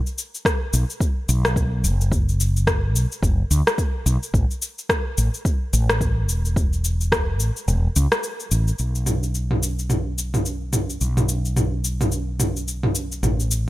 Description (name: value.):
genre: organic downtempo.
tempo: 108 BPM.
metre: 4/4.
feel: swing 59% on 16ths.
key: unclear.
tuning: A4 = 441 Hz.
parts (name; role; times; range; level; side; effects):
deep house drum kit; drums; 0.1-13.6 s; cabasa, rim click, toms; -24 LUFS; equal; overdrive.
electronic kick drum; drums; 0.5-7.3 s; none; -22 LUFS; equal; overdrive.
mellow fretless electric bass; bass; 0.7-13.7 s; E1 to D2; -21 LUFS; equal; none.
room: little or no reverb.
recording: none.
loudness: -19 LUFS.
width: side -16 dB against mid.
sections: 0.0-8.8 A section; 8.8-13.7 B section.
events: kick drops out 7.7-8.8.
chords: none.